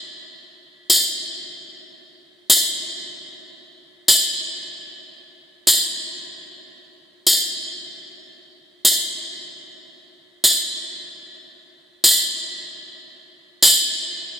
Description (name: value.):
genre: folk.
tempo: 75 BPM.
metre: 4/4.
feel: straight.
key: none.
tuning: none.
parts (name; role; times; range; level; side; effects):
tambourine; percussion; 0.9-13.8 s; none; -14 LUFS; equal; none.
room: wet cathedral reverb, RT60 5.1 s.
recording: recorded in a church or concert hall.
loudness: -14 LUFS.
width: side -9 dB against mid.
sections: 0.0-14.4 A section.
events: none.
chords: none.